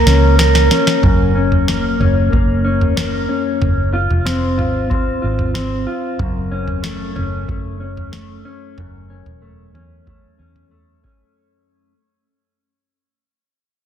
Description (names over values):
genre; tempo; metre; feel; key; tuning
dream pop; 93 BPM; 4/4; straight; unclear; A4 = 438 Hz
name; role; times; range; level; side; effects
mellow electric guitar; arpeggios; 0.0-11.9 s; Gb2 to Bb4; -18 LUFS; left 1 dB; lush chorus, ping-pong delay
vintage muted fingered electric bass; bass; 0.0-11.0 s; E1 to E2; -18 LUFS; equal; none
booming analog drum machine; drums; 0.1-11.2 s; kick drum, snare drum, toms; -19 LUFS; right 1 dB; none
room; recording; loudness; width
light reverb; dense, heavily limited modern master; -14 LUFS; side -9 dB against mid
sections
0.0-1.0 A section; 1.0-11.4 B section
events
drum fill 0.0-1.0; fade-out 1.0-11.4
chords
0.0 Gb (rootless); 1.0 Gb; 3.6 Fm; 6.2 A/Gb